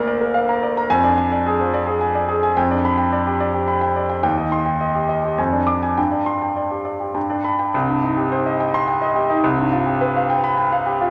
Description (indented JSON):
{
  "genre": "classical, virtuoso piano study",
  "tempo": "106 BPM",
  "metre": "3/4",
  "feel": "rubato",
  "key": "C minor",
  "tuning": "A4 = 445 Hz",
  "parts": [
    { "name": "clear concert grand piano", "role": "solo", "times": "0.0-11.1 s", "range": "C2 to D6", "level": "-19 LUFS", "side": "equal", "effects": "none" }
  ],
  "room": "wet recital hall reverb, RT60 1.4 s",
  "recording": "none",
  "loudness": "-19 LUFS",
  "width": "mono",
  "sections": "0.0-7.7 A section; 7.7-11.1 B section",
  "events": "none",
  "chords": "0.0 Bb/D; 0.9 Ddim/F; 2.6 G7/F; 4.2 Cm/Eb; 5.4 Ddim/F; 6.0 Gsus4; 7.2 G; 7.7 Cm; 9.4 G7/C"
}